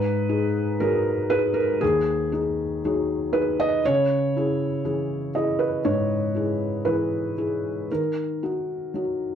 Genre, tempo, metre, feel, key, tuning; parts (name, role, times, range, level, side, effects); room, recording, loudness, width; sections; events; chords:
neoclassical minimalist piano; 60 BPM; 4/4; rubato; G# minor; A4 = 440 Hz
felt-muted upright piano; solo; 0.0-9.3 s; D#2 to D#5; -22 LUFS; equal; slapback echo
light reverb; dry, close 1970s-style studio recording; -22 LUFS; side -8 dB against mid
0.0-9.3 A section
0.0 G#m7; 3.8 C#m; 7.9 D#m